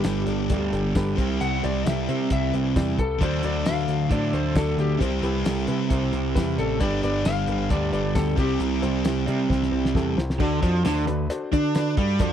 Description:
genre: classic rock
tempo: 134 BPM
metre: 4/4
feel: straight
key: D mixolydian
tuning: A4 = 444 Hz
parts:
  - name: electric slide guitar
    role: melody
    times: 0.0-8.6 s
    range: G4 to F#5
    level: -30 LUFS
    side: left 5 dB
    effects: none
  - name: warm upright piano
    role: accompaniment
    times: 0.0-12.3 s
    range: D4 to D5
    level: -32 LUFS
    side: left 3 dB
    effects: none
  - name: overdriven semi-hollow guitar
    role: riff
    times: 0.0-12.3 s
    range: G2 to D4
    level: -26 LUFS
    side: right 9 dB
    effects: none
  - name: sludgy distorted guitar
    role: riff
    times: 0.0-12.3 s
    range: G2 to E4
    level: -29 LUFS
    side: left 9 dB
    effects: overdrive
  - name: growling picked electric bass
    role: bass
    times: 0.0-12.3 s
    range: G1 to D3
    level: -28 LUFS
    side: equal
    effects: overdrive
  - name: cloth-damped thuddy drum kit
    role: drums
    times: 0.0-12.3 s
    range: crash cymbal, hi-hat, kick drum, snare drum, tambourine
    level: -25 LUFS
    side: equal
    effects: none
  - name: overdriven electric guitar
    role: riff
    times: 10.4-12.3 s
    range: D3 to D4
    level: -29 LUFS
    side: right 2 dB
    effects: none
  - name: cowbell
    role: percussion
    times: 10.4-12.3 s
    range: none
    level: -40 LUFS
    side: right 1 dB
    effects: none
room: small room ambience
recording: dry, close 1970s-style studio recording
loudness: -21 LUFS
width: side -9 dB against mid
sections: 0.0-10.4 A section; 10.4-12.3 B section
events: electric slide guitar solo 0.0-10.4; drum fill 9.5-10.4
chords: 0.0 Gadd9; 1.2 C; 3.2 D; 5.0 C; 6.8 Gadd9; 8.4 C; 10.4 D

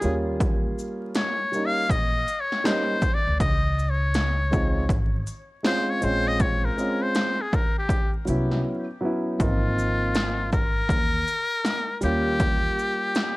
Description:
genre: hip hop, jazz-hop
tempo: 80 BPM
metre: 4/4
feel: swing 64% on 16ths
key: unclear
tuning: A4 = 440 Hz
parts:
  - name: trumpet with metal mute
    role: melody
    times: 0.0-13.4 s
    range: F4 to F5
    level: -26 LUFS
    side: left 2 dB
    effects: none
  - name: dark concert grand piano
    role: accompaniment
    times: 0.0-13.4 s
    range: F3 to F4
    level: -27 LUFS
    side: right 1 dB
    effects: none
  - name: upright bass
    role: bass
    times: 0.0-12.7 s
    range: Ab1 to Eb2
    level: -27 LUFS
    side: equal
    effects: none
  - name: big-room dance drum kit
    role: drums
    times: 0.0-13.4 s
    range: hi-hat, kick drum, shaker, snare drum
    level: -25 LUFS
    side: equal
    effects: overdrive, vintage 12-bit sampler grit
room: light reverb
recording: vinyl crackle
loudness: -22 LUFS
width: side -20 dB against mid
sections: 0.0-9.4 A section; 9.4-13.4 B section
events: muted trumpet solo 0.0-9.4; break 8.7-9.4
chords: 0.0 Eb9; 3.4 Dbmaj7; 6.0 Bbm9; 8.7 Gb7sus4; 9.4 Ab69; 12.0 Eb9

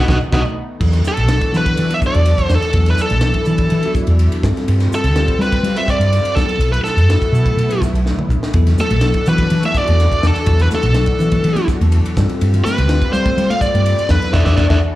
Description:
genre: electric jazz fusion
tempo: 124 BPM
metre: 4/4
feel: straight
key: E minor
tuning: A4 = 440 Hz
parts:
  - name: bluesy overdriven lead guitar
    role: melody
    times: 0.0-14.8 s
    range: A4 to F#5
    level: -19 LUFS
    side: equal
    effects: distortion, slapback echo
  - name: bell-like tine electric piano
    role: accompaniment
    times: 0.0-14.8 s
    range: F#3 to B4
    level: -24 LUFS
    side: left 2 dB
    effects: lush chorus, slapback echo
  - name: lush unison pad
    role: sustained chords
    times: 0.2-15.0 s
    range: E3 to A4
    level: -27 LUFS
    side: equal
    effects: chorus, phaser
  - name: woody fretless electric bass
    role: bass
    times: 0.0-14.8 s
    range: B1 to G3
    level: -14 LUFS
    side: equal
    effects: none
  - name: crisp fusion drum kit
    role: drums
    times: 0.1-14.8 s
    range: crash cymbal, hi-hat, kick drum, ride cymbal, snare drum, toms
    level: -21 LUFS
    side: equal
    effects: none
  - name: congas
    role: percussion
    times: 0.1-0.4, 8.7-14.8 s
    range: none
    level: -27 LUFS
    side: right 2 dB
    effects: none
room: little or no reverb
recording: live gig heard through the venue's PA, club reverb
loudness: -13 LUFS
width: side -16 dB against mid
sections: 0.8-15.0 A section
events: drum fill 0.0-0.8, 8.1-8.5; band accent 0.0-0.8, 14.3-15.0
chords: 0.0 B7; 0.8 E9sus4; 4.4 G9sus4; 6.4 B7sus4; 8.5 E9sus4; 12.2 G9sus4; 14.1 E9sus4

